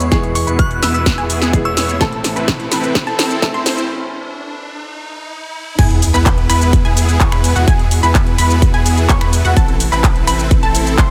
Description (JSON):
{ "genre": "EDM, festival progressive house", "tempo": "127 BPM", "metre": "4/4", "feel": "straight", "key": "E major", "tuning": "A4 = 440 Hz", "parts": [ { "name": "clear baby grand piano", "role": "accompaniment", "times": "0.0-5.8 s", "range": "A2 to A4", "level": "-27 LUFS", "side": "equal", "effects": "sidechain pumping, digital delay" }, { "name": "clear symphonic string section", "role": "sustained chords", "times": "0.0-11.1 s", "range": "B2 to A4", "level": "-30 LUFS", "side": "equal", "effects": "none" }, { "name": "unison pluck", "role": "arpeggios", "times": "0.0-11.1 s", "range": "F#5 to C#6", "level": "-24 LUFS", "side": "equal", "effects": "sidechain pumping, digital delay" }, { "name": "supersaw chords", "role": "riff", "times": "0.0-11.1 s", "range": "B3 to C#5", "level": "-23 LUFS", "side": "equal", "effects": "sidechain pumping, low-pass filter, digital delay" }, { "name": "saturated sub bass", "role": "bass", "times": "0.0-11.1 s", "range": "A1 to E2", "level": "-20 LUFS", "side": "equal", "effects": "sidechain pumping" }, { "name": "big-room dance drum kit", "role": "drums", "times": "0.0-11.1 s", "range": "crash cymbal, finger snaps, handclaps, hi-hat, shaker, snare drum", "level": "-22 LUFS", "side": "equal", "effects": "none" }, { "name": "riser and sub drop", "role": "sound effects", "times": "3.1-7.7 s", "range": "none", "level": "-28 LUFS", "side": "equal", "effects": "none" }, { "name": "electronic kick drum", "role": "drums", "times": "0.1-11.1 s", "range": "none", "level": "-16 LUFS", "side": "equal", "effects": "none" }, { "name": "glassy synth bell", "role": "melody", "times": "0.4-1.8 s", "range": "C#6 to F#6", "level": "-25 LUFS", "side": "equal", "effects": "chorus, digital delay" } ], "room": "light reverb, digital ambience", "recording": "high-pass filter", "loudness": "-14 LUFS", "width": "mono", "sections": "0.0-5.8 A section; 5.8-11.1 B section", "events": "build-up 0.0-5.8; drum fill 0.0-3.9; filter sweep on supersaw synth 0.0-5.8; filter sweep on synth pluck 0.0-5.8; filter sweep 0.0-5.8; break 3.9-5.8; drop 5.8-11.1; impact 5.8-7.7", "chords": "0.0 E; 2.0 Am; 5.8 E; 9.6 Am", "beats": "| 0.12 0.59 1.06 1.53 | 2.01 2.48 2.95 3.42 | 3.90 4.37 4.84 5.31 | 5.79 6.26 6.73 7.20 | 7.68 8.15 8.62 9.09 | 9.57 10.04 10.51 10.98" }